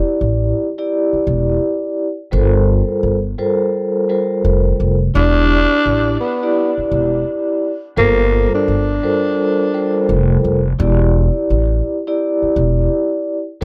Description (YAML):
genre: hip hop, boom-bap hip-hop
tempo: 85 BPM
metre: 4/4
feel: swing 61% on 16ths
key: E minor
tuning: A4 = 440 Hz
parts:
  - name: vibraphone with soft mallets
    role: accompaniment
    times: 0.0-13.6 s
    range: G3 to D5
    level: -20 LUFS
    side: equal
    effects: cassette tape, high-pass filter, low-pass filter
  - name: upright bass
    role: bass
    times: 0.2-13.6 s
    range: E1 to A1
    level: -18 LUFS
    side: equal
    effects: none
  - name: growling tenor saxophone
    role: melody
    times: 5.2-10.3 s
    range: Bb3 to D4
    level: -19 LUFS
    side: equal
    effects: high-pass filter, low-pass filter, tape echo
room: little or no reverb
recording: dry, gritty hardware recording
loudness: -16 LUFS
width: mono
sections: 0.0-5.1 A section; 5.1-13.6 A section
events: none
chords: 0.0 Em7; 2.3 Gm11; 5.1 Em7; 8.0 Gm11; 10.8 Em7